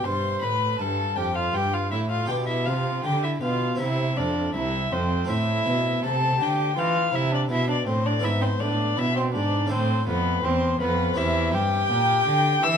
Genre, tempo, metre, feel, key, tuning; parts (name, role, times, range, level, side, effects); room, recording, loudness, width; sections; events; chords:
classical, baroque-style sonata movement with continuo; 81 BPM; 4/4; rubato; C major; A4 = 440 Hz
dark violin; melody; 0.0-12.8 s; B4 to E6; -26 LUFS; left 6 dB
warm violin; second line; 0.0-12.8 s; B3 to E5; -28 LUFS; right 5 dB
harpsichord; accompaniment; 0.0-12.8 s; C2 to G4; -30 LUFS; left 1 dB
rich cello; bass; 0.0-12.8 s; C2 to E3; -27 LUFS; right 1 dB
moderate recital hall reverb, RT60 1.5 s; close, detailed microphones, faint mains hum; -21 LUFS; side -7 dB against mid
0.0-12.8 A section
0.0 C; 2.3 G/B; 3.8 C; 5.3 Am; 8.2 E/G#; 9.7 Am; 11.2 C/E